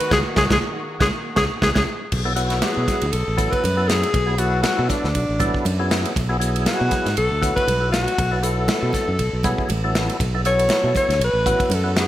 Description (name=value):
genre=electric jazz fusion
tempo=119 BPM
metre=4/4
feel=swing 56% on 16ths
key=unclear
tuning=A4 = 439 Hz
part: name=breathy alto saxophone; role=melody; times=0.0-12.1 s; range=D4 to C#5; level=-22 LUFS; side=left 1 dB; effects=none
part: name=muted studio string section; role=sustained chords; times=0.0-2.1 s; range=D#3 to F#4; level=-32 LUFS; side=equal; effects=none
part: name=modern studio drum kit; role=drums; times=0.0-12.1 s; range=crash cymbal, hi-hat, kick drum, ride cymbal, snare drum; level=-24 LUFS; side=equal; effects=gated reverb
part: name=overdriven tonewheel organ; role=accompaniment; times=0.1-12.1 s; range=F#3 to A4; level=-26 LUFS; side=equal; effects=slow rotary speaker, chorus vibrato
part: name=fingered electric bass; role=bass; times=0.1-12.1 s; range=A1 to B2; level=-23 LUFS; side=equal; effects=none
part: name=congas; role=percussion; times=0.1-12.0 s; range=none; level=-30 LUFS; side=right 2 dB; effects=none
room=moderate plate reverb, RT60 2.0 s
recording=bright 1980s-style digital production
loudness=-18 LUFS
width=side -13 dB against mid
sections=0.0-2.1 A section; 2.1-12.1 B section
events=band accent 0.1-2.1; tonewheel organ fill 0.6-2.1; drum fill 1.7-2.1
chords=0.0 C#sus4; 2.1 Bm7; 6.2 Eadd9/B; 8.2 F#m11; 10.2 B9sus4